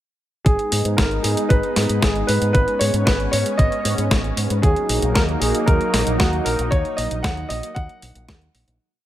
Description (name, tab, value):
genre	italo disco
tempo	115 BPM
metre	4/4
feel	straight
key	G# minor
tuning	A4 = 440 Hz
part	dark grand piano	melody	0.4-8.5 s	F#4 to F#5	-23 LUFS	equal	tape echo
part	lush unison pad	sustained chords	0.5-8.8 s	F#3 to D#4	-25 LUFS	equal	chorus
part	fingered electric bass with an envelope filter	bass	0.5-8.8 s	G#1 to G#2	-23 LUFS	equal	none
part	clean 12-bit digital drum machine	drums	0.5-8.8 s	hi-hat, snare drum	-24 LUFS	left 1 dB	overdrive
part	electronic kick drum	drums	0.5-8.4 s	none	-18 LUFS	equal	overdrive
room	digital ambience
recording	none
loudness	-17 LUFS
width	side -13 dB against mid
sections	0.5-8.8 chorus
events	fade-out 6.0-8.8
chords	0.5 G#m; 4.6 D#m